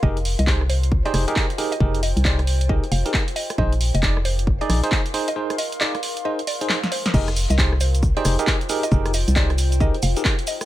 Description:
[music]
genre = UK garage, two-step garage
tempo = 135 BPM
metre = 4/4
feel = swing 63% on 16ths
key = F dorian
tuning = A4 = 443 Hz
[part]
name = mallet-like synth pluck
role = melody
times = 0.0-10.6 s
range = C5 to F5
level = -31 LUFS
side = equal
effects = chorus, tape echo
[part]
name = bell-like tine electric piano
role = stabs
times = 0.0-10.3 s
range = Eb4 to D5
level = -27 LUFS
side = right 1 dB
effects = medium stereo tremolo, vintage 12-bit sampler grit, tape echo
[part]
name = organ-like FM bass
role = bass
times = 0.0-10.2 s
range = F1 to C2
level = -20 LUFS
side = equal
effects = none
[part]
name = electronic kick drum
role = drums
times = 0.0-10.4 s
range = none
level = -21 LUFS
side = equal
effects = none
[part]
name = warbly tape-like pad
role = texture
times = 0.0-10.7 s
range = F4 to C6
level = -33 LUFS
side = equal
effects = chorus, built-in reverb, phaser, sidechain pumping
[part]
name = punchy analog drum machine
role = drums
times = 0.2-10.7 s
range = crash cymbal, handclaps, hi-hat, rim click, shaker, snare drum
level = -25 LUFS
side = right 1 dB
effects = none
[sound]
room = little or no reverb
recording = none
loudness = -18 LUFS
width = side -14 dB against mid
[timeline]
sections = 0.0-7.1 A section; 7.1-10.7 B section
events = break 5.4-7.1; drum fill 6.7-7.1; drop 7.1-10.7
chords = 0.0 Fm11; 3.6 Bb7sus4; 7.1 Fm11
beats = | 0.03 0.47 0.92 1.36 | 1.81 2.25 2.69 3.14 | 3.58 4.03 4.47 4.92 | 5.36 5.81 6.25 6.70 | 7.14 7.58 8.03 8.47 | 8.92 9.36 9.81 10.25

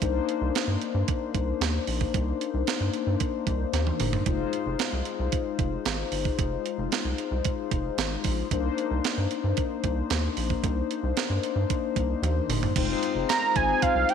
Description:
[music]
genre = early-eighties boogie funk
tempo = 113 BPM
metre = 4/4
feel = straight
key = F dorian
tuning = A4 = 437 Hz
[part]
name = mellow synth brass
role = accompaniment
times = 0.0-14.1 s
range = Ab3 to C5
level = -29 LUFS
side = left 10 dB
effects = chorus
[part]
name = rubbery square bass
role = bass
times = 0.0-14.0 s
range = F1 to G2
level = -29 LUFS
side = right 1 dB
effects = none
[part]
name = clean 12-bit digital drum machine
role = drums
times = 0.0-14.1 s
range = crash cymbal, hi-hat, kick drum, snare drum, toms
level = -29 LUFS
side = right 6 dB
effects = none
[part]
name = fat analog lead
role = melody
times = 13.3-14.1 s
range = F5 to Bb5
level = -22 LUFS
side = right 5 dB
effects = slapback echo
[sound]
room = moderate echo chamber reverb, RT60 2.0 s, digital ambience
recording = 1960s-style stereo with parts hard left and right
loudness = -24 LUFS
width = side -7 dB against mid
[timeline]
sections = 0.0-12.8 A section; 12.8-14.1 B section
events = drum fill 3.7-4.3, 12.2-12.8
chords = 0.0 Cm9; 4.3 Fm7; 8.5 Cm9; 12.8 Fm7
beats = | 0.02 0.55 1.08 1.61 | 2.14 2.67 3.20 3.73 | 4.26 4.80 5.33 5.86 | 6.39 6.92 7.45 7.98 | 8.51 9.04 9.57 10.11 | 10.64 11.17 11.70 12.23 | 12.76 13.29 13.82

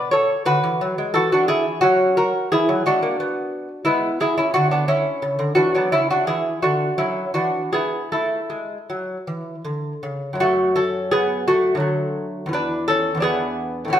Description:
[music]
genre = classical, baroque-style dance for lute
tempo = 77-90 BPM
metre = 3/4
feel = rubato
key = unclear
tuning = A4 = 440 Hz
[part]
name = lute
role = solo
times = 0.0-14.0 s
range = E2 to C#5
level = -18 LUFS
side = equal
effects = none
[sound]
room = wet stone room reverb, RT60 1.2 s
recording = band playing live in one room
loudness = -18 LUFS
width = side -10 dB against mid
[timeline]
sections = 0.0-10.4 A section; 10.4-14.0 A section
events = none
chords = 0.0 Bm7; 1.1 E7; 1.8 F#7; 3.2 Bm; 3.9 E7; 5.2 Dmaj13/C#; 5.9 C#m; 6.6 Dmaj9; 7.3 E7; 8.1 A5; 10.4 F#m; 11.8 D; 12.5 E7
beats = 0.46 1.14 | 1.82 2.51 3.19 | 3.86 4.54 5.22 | 5.92 6.62 7.34 | 8.11 8.87 9.64 | 10.40 11.12 11.83 | 12.53 13.22 13.93

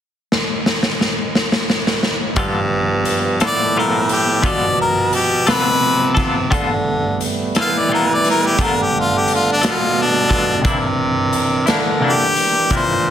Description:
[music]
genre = slow blues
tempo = 58 BPM (dotted quarters)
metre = 12/8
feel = straight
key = G mixolydian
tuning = A4 = 439 Hz
[part]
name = raw garage drum kit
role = drums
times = 0.3-12.9 s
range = hi-hat, kick drum, snare drum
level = -20 LUFS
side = equal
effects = none
[part]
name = semi-hollow electric guitar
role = accompaniment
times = 2.4-12.9 s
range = C3 to A4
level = -21 LUFS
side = left 3 dB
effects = tremolo
[part]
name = bright tonewheel organ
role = sustained chords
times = 2.4-13.1 s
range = E3 to A5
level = -24 LUFS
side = right 3 dB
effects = slow rotary speaker
[part]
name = breathy baritone saxophone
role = bass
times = 2.4-13.1 s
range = G2 to E3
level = -20 LUFS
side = equal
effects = none
[part]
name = bright harmonica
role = melody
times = 3.5-13.1 s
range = D4 to F5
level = -17 LUFS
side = left 2 dB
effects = none
[sound]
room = moderate small room reverb, RT60 0.5 s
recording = dense, heavily limited modern master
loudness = -14 LUFS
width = side -10 dB against mid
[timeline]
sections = 0.0-2.4 A section; 2.4-13.1 B section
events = drum fill 0.3-2.4; harmonica solo 2.4-13.1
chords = 0.0 N.C.; 2.4 G9; 10.7 C9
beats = 0.32 1.35 | 2.39 3.42 4.46 5.49 | 6.52 7.56 8.59 9.62 | 10.66 11.69 12.72

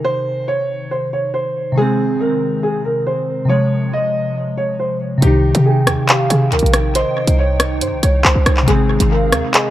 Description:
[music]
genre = hip hop, drill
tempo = 139 BPM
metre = 4/4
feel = half-time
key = C phrygian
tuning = A4 = 439 Hz
[part]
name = dark grand piano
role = melody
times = 0.0-9.7 s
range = G4 to Eb5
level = -19 LUFS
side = equal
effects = tape echo
[part]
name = glassy digital keys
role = accompaniment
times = 0.0-9.7 s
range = C3 to Eb4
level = -19 LUFS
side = left 1 dB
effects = chorus, tape echo
[part]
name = hollow soft pad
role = sustained chords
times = 5.2-9.7 s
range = C3 to G5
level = -25 LUFS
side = right 2 dB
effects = ensemble chorus
[part]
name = short 808-style bass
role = bass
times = 5.2-9.4 s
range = Ab1 to C3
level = -15 LUFS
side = equal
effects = none
[part]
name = drill drum kit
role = drums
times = 5.2-9.6 s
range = handclaps, hi-hat, rim click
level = -17 LUFS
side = equal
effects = tape echo
[part]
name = warm velvety synth lead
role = second line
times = 5.7-9.7 s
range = Eb5 to G5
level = -26 LUFS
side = right 4 dB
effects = chorus, tape echo
[sound]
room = digital ambience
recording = echo-heavy mix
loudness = -14 LUFS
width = side -14 dB against mid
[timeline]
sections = 0.0-9.7 A section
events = none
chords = 0.0 Cm; 1.8 Ab; 3.5 Fm; 5.2 Cm; 8.7 Ab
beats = | 0.04 0.48 0.91 1.34 | 1.77 2.20 2.63 3.07 | 3.50 3.93 4.36 4.79 | 5.22 5.66 6.09 6.52 | 6.95 7.38 7.81 8.25 | 8.68 9.11 9.54

